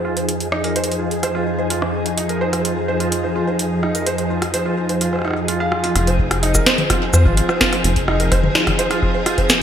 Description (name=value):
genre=IDM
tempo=127 BPM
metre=4/4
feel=straight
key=F minor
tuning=A4 = 440 Hz
part: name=soft string machine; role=sustained chords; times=0.0-9.6 s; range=F2 to Ab4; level=-21 LUFS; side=equal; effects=ensemble chorus
part: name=felt-muted upright piano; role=arpeggios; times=0.0-9.5 s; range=Eb4 to F5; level=-22 LUFS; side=right 2 dB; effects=vintage 12-bit sampler grit, low-pass filter, digital delay
part: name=booming analog drum machine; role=drums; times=0.2-9.6 s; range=hi-hat, rim click, shaker, snare drum, toms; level=-20 LUFS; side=equal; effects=gated reverb, digital delay
part: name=rubbery square bass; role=bass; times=6.0-8.5 s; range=F1 to F2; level=-17 LUFS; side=equal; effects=none
part: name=electronic kick drum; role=drums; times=6.2-9.5 s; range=none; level=-22 LUFS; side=equal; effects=none
room=moderate plate reverb, RT60 2.1 s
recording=bright 1980s-style digital production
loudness=-16 LUFS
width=side -9 dB against mid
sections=0.0-6.0 A section; 6.0-9.6 B section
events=filter sweep on string machine 0.0-6.0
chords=0.0 Fm7